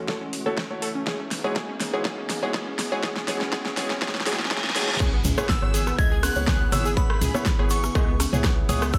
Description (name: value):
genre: progressive house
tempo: 122 BPM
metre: 4/4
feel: straight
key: C# minor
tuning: A4 = 441 Hz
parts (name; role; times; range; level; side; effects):
- warm analog pad; sustained chords; 0.0-9.0 s; C#2 to G#4; -38 LUFS; equal; none
- unison pluck; arpeggios; 0.0-8.9 s; B3 to A4; -34 LUFS; equal; cassette tape, sidechain pumping, delay
- riser, reverse cymbal and impact; sound effects; 0.3-7.0 s; none; -36 LUFS; equal; none
- warm grand piano; stabs; 0.1-9.0 s; G#3 to D#5; -34 LUFS; equal; sidechain pumping, delay
- deep house drum kit; drums; 0.1-8.8 s; crash cymbal, hi-hat, ride cymbal, rim click, snare drum; -32 LUFS; equal; sidechain pumping on hats, studio reverb, sidechain pumping on cymbals
- electronic kick drum; drums; 0.1-9.0 s; none; -26 LUFS; equal; high-pass filter on kick, studio reverb
- egg shaker; percussion; 5.0-9.0 s; none; -39 LUFS; equal; none
- punchy analog drum machine; percussion; 5.0-8.9 s; congas, rim click, toms; -33 LUFS; equal; overdrive, sidechain pumping on snare, studio reverb, sidechain pumping on toms, sidechain pumping on perc
- round analog bass; bass; 5.2-9.0 s; G#1 to C#2; -30 LUFS; equal; sidechain pumping
- glassy synth bell; melody; 5.5-9.0 s; B5 to G#6; -32 LUFS; equal; chorus, digital delay
- warm chamber violin section; second line; 5.5-9.0 s; B5 to G#6; -41 LUFS; equal; sidechain pumping, delay
room: light reverb, digital ambience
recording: high-pass filter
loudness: -24 LUFS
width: mono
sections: 0.0-5.0 A section; 5.0-9.0 B section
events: build-up 0.0-5.0; drum fill 0.0-5.0; filter sweep on synth pluck 0.0-5.0; filter sweep 0.0-5.0; reverse cymbal 4.0-5.0; drop 5.0-9.0; impact 5.0-7.0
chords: 0.0 F#m7/C#; 1.1 Emaj7/C#; 5.0 C#m7